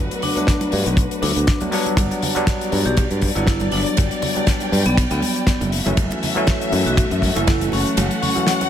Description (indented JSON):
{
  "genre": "nu-disco, nu disco",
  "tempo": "120 BPM",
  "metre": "4/4",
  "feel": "swing 55% on 16ths",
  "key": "E dorian",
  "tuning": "A4 = 441 Hz",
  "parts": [
    { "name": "bell-like tine electric piano", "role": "accompaniment", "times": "0.0-8.7 s", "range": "E3 to D4", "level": "-24 LUFS", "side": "equal", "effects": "wide subtle chorus, sidechain pumping, dub echo" },
    { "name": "warm studio string section", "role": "sustained chords", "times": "0.0-8.7 s", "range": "A3 to G5", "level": "-26 LUFS", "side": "left 2 dB", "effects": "sidechain pumping" },
    { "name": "modern bright fingered electric bass", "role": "bass", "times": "0.0-8.1 s", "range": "F#1 to G2", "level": "-22 LUFS", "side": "equal", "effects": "none" },
    { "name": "damped 70s drum kit", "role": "drums", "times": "0.1-8.7 s", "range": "hi-hat, ride cymbal, snare drum", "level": "-25 LUFS", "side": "left 2 dB", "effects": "none" },
    { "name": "vibraphone with medium hard mallets", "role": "melody", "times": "0.2-8.7 s", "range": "B3 to G4", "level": "-26 LUFS", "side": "equal", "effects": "dub echo" },
    { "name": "congas", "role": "percussion", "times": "0.2-8.7 s", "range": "none", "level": "-30 LUFS", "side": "right 3 dB", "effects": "none" },
    { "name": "kick drum", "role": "drums", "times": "0.5-7.6 s", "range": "none", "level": "-18 LUFS", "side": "equal", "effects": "none" }
  ],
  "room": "light reverb, studio reverb",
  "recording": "none",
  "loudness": "-16 LUFS",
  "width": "side -10 dB against mid",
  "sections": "0.0-8.7 A section",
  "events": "kick drops out 8.0-8.7",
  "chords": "0.0 Gmaj7; 2.0 Em9 (rootless); 5.7 F#m7",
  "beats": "0.47 0.97 1.48 | 1.98 2.48 2.98 3.48 | 3.98 4.47 4.97 5.47 | 5.97 6.47 6.97 7.47 | 7.97 8.47"
}